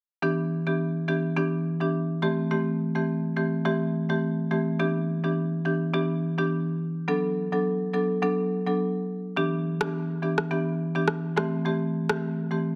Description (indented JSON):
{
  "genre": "afrobeats",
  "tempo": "105 BPM",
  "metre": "4/4",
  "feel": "swing 55% on 16ths",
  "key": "unclear",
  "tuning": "A4 = 441 Hz",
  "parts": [
    { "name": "marimba with medium mallets", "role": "accompaniment", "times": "0.2-12.7 s", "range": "E3 to A4", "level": "-27 LUFS", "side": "equal", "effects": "none" },
    { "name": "electronic rim click", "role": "drums", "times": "9.8-12.2 s", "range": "none", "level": "-30 LUFS", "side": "equal", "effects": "soft clipping on snare" }
  ],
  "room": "light reverb, studio ambience",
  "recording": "dense, heavily limited modern master",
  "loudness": "-27 LUFS",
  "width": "mono",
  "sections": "0.2-12.8 A section",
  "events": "none",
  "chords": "0.2 Em7; 2.2 Am7; 4.8 G6; 7.1 Bm7; 9.4 Em7; 11.4 Am7"
}